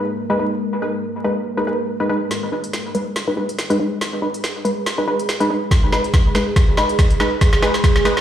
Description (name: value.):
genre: deep dubstep.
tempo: 141 BPM.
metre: 4/4.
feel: swing 55% on 16ths, half-time.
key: G# minor.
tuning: A4 = 439 Hz.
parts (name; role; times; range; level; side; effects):
deep dark ambient pad; sustained chords; 0.0-8.2 s; G#3 to A#4; -25 LUFS; right 2 dB; chorus, built-in reverb.
filtered dub chord stab; stabs; 0.0-8.1 s; G#3 to B4; -21 LUFS; left 1 dB; chorus, cassette tape, dub echo.
dark detuned saw bass; bass; 2.3-8.2 s; F#1 to G#1; -38 LUFS; right 1 dB; none.
deep house drum kit; drums; 2.3-8.2 s; hi-hat, snare drum; -23 LUFS; right 1 dB; high-pass filter on snare, low-pass filter on snare, studio reverb, high-pass filter on hats, low-pass filter on hats.
electronic kick drum; drums; 5.7-7.9 s; none; -15 LUFS; equal; studio reverb.
room: moderate digital room reverb, RT60 1.0 s.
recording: played on a big sound system in a bare room, stone room reverb, vinyl crackle.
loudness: -16 LUFS.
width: side -10 dB against mid.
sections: 0.0-2.3 A section; 2.3-8.2 B section.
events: build-up 2.3-8.2; drum fill 2.3-8.2; filter sweep on synth stab 2.3-8.2; filter sweep on ambient pad 2.3-8.2.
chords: 0.0 G#m.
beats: 0.18 | 0.61 1.03 1.46 1.88 | 2.31 2.73 3.16 3.58 | 4.01 4.44 4.86 5.29 | 5.71 6.14 6.56 6.99 | 7.42 7.84.